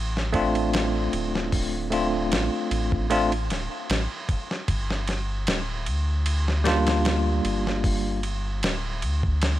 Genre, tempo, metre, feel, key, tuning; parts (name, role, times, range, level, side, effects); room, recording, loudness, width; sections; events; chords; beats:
trip hop; 76 BPM; 4/4; swing 54% on 16ths; D minor; A4 = 440 Hz
soft dub sub bass; bass; 0.0-9.6 s; D1 to D2; -26 LUFS; equal
dusty soul sampler-style drum kit; drums; 0.2-9.6 s; hi-hat, kick drum, ride cymbal, snare drum; -28 LUFS; equal
bell-like tine electric piano; accompaniment; 0.3-8.2 s; G3 to F4; -25 LUFS; equal; medium stereo tremolo, harmonic tremolo, tape echo
little or no reverb; -22 LUFS; side -14 dB against mid
0.0-9.6 A section
0.0 Dm7; 4.7 Gm7
0.73 | 1.52 2.31 3.10 3.89 | 4.68 5.47 6.26 7.05 | 7.84 8.63 9.41